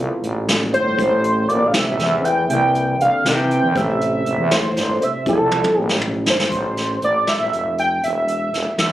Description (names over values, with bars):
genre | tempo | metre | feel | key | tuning
progressive instrumental, band music in an uneven meter | 238 BPM (eighths) | 11/8 | straight | A phrygian | A4 = 441 Hz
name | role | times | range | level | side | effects
octave-doubled lead | melody | 0.0-8.9 s | A4 to G5 | -19 LUFS | right 1 dB | chorus, phaser, plate reverb
mellow trombone | second line | 0.0-6.0 s | E2 to E3 | -24 LUFS | left 1 dB | none
dark concert grand piano | accompaniment | 0.0-6.5 s | C3 to E5 | -26 LUFS | left 1 dB | none
growling FM bass | bass | 0.0-8.9 s | E1 to C3 | -23 LUFS | equal | none
vintage brush drum kit | drums | 0.2-8.9 s | hi-hat, kick drum, snare drum, toms | -22 LUFS | equal | none
room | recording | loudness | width
moderate studio reverb, RT60 0.6 s | recorded on a phone in the room, club reverb, compression | -16 LUFS | side -13 dB against mid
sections
0.0-6.5 A section; 6.5-8.9 B section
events
drum fill 5.5-6.5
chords
0.0 Fmaj7; 1.0 Am7; 2.5 C7; 3.8 Am7; 5.3 Fmaj7; 6.5 Am; 8.0 N.C.